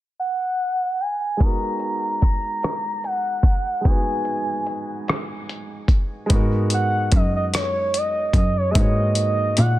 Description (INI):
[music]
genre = slow six-eight R&B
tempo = 49 BPM (dotted quarters)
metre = 6/8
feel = straight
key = G# minor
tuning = A4 = 438 Hz
[part]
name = gliding portamento lead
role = melody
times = 0.2-9.8 s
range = C#5 to A#5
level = -24 LUFS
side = equal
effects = chorus
[part]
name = warm baby grand piano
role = accompaniment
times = 1.4-9.8 s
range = G#3 to C#5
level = -28 LUFS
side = right 1 dB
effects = none
[part]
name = dusty soul sampler-style drum kit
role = drums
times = 1.4-9.8 s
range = hi-hat, kick drum, rim click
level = -19 LUFS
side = equal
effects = soft clipping on snare
[part]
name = rich cello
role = bass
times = 6.3-9.8 s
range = F#2 to A#2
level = -21 LUFS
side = equal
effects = none
[sound]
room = light reverb, digital ambience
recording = dense, heavily limited modern master, low-pass filter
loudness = -19 LUFS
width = side -15 dB against mid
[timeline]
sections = 0.0-1.4 A section; 1.4-6.3 B section; 6.3-9.8 C section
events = filter sweep 1.4-6.3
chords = 0.0 N.C.; 1.4 G#m9